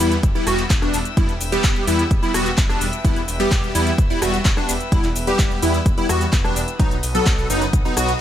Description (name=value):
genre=EDM, festival progressive house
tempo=128 BPM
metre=4/4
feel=straight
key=E minor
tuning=A4 = 440 Hz
part: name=rich chamber string section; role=sustained chords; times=0.0-8.2 s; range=B4 to E6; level=-31 LUFS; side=left 2 dB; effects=sidechain pumping
part: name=plucky unison lead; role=arpeggios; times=0.0-8.1 s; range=D4 to A4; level=-24 LUFS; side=left 1 dB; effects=ensemble chorus, sidechain pumping, digital delay
part: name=supersaw chords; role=riff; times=0.0-8.1 s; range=F#3 to A4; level=-23 LUFS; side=right 1 dB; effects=sidechain pumping, digital delay
part: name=wide detuned saw bass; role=bass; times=0.0-8.1 s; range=E1 to E2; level=-25 LUFS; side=equal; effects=chorus, sidechain pumping
part: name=house drum kit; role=drums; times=0.0-8.2 s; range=handclaps, hi-hat, rim click, shaker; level=-26 LUFS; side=left 1 dB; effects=none
part: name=electronic kick drum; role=drums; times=0.2-7.8 s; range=none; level=-18 LUFS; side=equal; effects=none
room=light reverb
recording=none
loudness=-16 LUFS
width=side -11 dB against mid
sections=0.0-8.2 A section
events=none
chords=0.0 Em; 6.8 B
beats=0.23 0.70 | 1.17 1.64 2.11 2.58 | 3.05 3.51 3.98 4.45 | 4.92 5.39 5.86 6.33 | 6.80 7.26 7.73 8.20